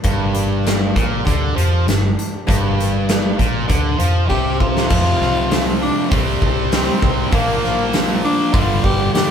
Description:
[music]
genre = classic rock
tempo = 99 BPM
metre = 4/4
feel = straight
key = G minor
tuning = A4 = 440 Hz
[part]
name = picked swing-style acoustic guitar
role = accompaniment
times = 0.0-9.3 s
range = G2 to Bb4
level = -30 LUFS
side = left 1 dB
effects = none
[part]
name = tight distorted guitar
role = riff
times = 0.0-9.3 s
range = F2 to C4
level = -23 LUFS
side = left 5 dB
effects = distortion
[part]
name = vintage muted fingered electric bass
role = bass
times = 0.0-9.1 s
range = G1 to F2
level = -21 LUFS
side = equal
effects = none
[part]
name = huge arena drum kit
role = drums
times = 0.0-9.3 s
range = crash cymbal, hi-hat, kick drum, snare drum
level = -19 LUFS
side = equal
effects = none
[part]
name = distorted electric guitar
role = riff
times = 0.1-9.3 s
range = F2 to C4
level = -23 LUFS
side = right 6 dB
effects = overdrive
[part]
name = raspy tenor saxophone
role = melody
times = 4.3-9.3 s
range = Bb3 to G4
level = -21 LUFS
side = left 1 dB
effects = none
[sound]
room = light reverb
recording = band playing live in one room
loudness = -15 LUFS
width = side -8 dB against mid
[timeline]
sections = 0.0-4.9 A section; 4.9-9.3 B section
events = drum fill 4.3-4.9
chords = 0.0 Gm; 4.9 F; 6.1 C; 7.3 Bb; 8.5 Gm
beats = | 0.04 0.65 1.25 1.86 | 2.47 3.08 3.68 4.29 | 4.90 5.50 6.11 6.72 | 7.32 7.93 8.54 9.14

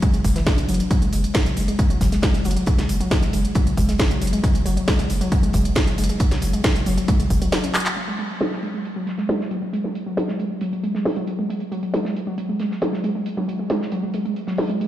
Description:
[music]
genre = driving peak-time techno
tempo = 136 BPM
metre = 4/4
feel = straight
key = unclear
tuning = A4 = 440 Hz
[part]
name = warbly dusty pluck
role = riff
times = 0.0-14.9 s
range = E3 to F#4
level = -24 LUFS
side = equal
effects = chorus, cassette tape, sidechain pumping, digital delay
[part]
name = damped 70s drum kit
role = drums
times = 0.0-14.9 s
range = hi-hat, snare drum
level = -40 LUFS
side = right 2 dB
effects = high-pass filter on hats, low-pass filter on hats, high-pass filter on snare, low-pass filter on snare, high-pass filter on room, low-pass filter on room
[part]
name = electronic kick drum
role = drums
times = 0.0-7.4 s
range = none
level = -20 LUFS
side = equal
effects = none
[part]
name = techno drum kit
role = drums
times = 0.0-14.9 s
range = handclaps, hi-hat, snare drum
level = -26 LUFS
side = equal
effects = low-pass filter on snare, low-pass filter on hats, low-pass filter on room
[part]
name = saturated sub bass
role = bass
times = 0.1-7.4 s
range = F#1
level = -25 LUFS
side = equal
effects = overdrive, sidechain pumping, low-pass filter
[sound]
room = light reverb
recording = played on a big sound system in a bare room, stone room reverb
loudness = -19 LUFS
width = side -13 dB against mid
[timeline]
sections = 0.0-8.0 A section; 8.0-14.9 B section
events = kick drops out 7.5-8.0; drum fill 7.7; band accent 7.9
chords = 0.0 F#5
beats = 0.03 0.47 | 0.91 1.35 1.79 2.23 | 2.67 3.11 3.55 4.00 | 4.44 4.88 5.32 5.76 | 6.20 6.64 7.08 7.53 | 7.97 8.41 8.85 9.29 | 9.73 10.17 10.61 11.05 | 11.49 11.94 12.38 12.82 | 13.26 13.70 14.14 14.58

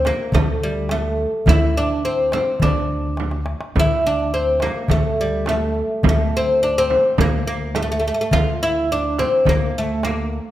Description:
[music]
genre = Turkish makam ensemble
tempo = 105 BPM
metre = 4/4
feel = straight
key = unclear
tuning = A4 = 440 Hz
[part]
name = oud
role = melody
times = 0.0-10.4 s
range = G3 to F4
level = -19 LUFS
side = equal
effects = none
[part]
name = upright bass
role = bass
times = 0.0-10.4 s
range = D2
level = -22 LUFS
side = equal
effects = none
[part]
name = darbuka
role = percussion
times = 0.1-10.4 s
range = none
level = -25 LUFS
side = left 2 dB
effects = none
[part]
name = frame drum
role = percussion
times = 0.1-10.2 s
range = none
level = -25 LUFS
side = right 6 dB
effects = none
[sound]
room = moderate recital hall reverb, RT60 1.5 s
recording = none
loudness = -17 LUFS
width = side -13 dB against mid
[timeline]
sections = 0.0-10.5 A section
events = drum fill 3.2-3.8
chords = none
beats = 0.33 0.90 | 1.47 2.04 2.61 3.18 | 3.75 4.32 4.89 5.46 | 6.04 6.61 7.18 7.75 | 8.32 8.89 9.46 10.03

